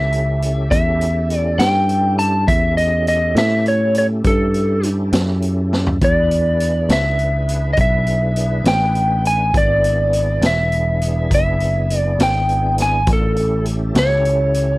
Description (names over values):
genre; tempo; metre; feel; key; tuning
slow blues; 68 BPM (dotted quarters); 12/8; straight; A mixolydian; A4 = 440 Hz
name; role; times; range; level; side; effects
electric slide guitar; melody; 0.0-14.8 s; A4 to A5; -18 LUFS; equal; none
tonewheel organ; sustained chords; 0.0-14.8 s; B3 to B4; -28 LUFS; right 1 dB; slow rotary speaker, overdrive, chorus vibrato
picked electric bass; bass; 0.0-14.8 s; E1 to A2; -18 LUFS; equal; none
raw garage drum kit; drums; 0.1-14.7 s; hi-hat, kick drum, snare drum, toms; -20 LUFS; equal; none
room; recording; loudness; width
little or no reverb; dry, close 1970s-style studio recording; -14 LUFS; side -20 dB against mid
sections
0.0-14.8 A section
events
drum fill 5.7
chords
0.0 A7; 6.0 E7; 13.1 A7